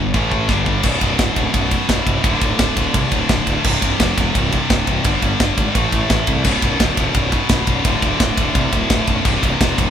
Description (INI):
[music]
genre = heavy metal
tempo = 171 BPM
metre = 4/4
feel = straight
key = B phrygian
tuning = A4 = 440 Hz
[part]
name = heavy high-gain guitar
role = riff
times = 0.0-9.9 s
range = B1 to A3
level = -18 LUFS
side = left 1 dB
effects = distortion
[part]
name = fuzz picked electric bass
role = bass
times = 0.0-9.9 s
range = B0 to C2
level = -21 LUFS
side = equal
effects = overdrive
[part]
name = tight metal drum kit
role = drums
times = 0.1-9.9 s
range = crash cymbal, kick drum, ride cymbal, snare drum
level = -19 LUFS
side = right 1 dB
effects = none
[sound]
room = light reverb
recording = band playing live in one room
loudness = -14 LUFS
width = side -9 dB against mid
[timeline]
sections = 0.8-9.9 A section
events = drum fill 0.5-0.8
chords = 0.1 A5; 0.5 G5; 0.8 Bm; 2.2 D5; 3.6 C; 5.0 G5; 5.7 Am; 6.4 Bm; 7.9 D5; 9.3 C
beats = 0.14 0.49 | 0.84 1.19 1.54 1.89 | 2.24 2.59 2.94 3.29 | 3.64 3.99 4.34 4.69 | 5.04 5.40 5.75 6.10 | 6.45 6.80 7.15 7.50 | 7.85 8.20 8.55 8.90 | 9.26 9.61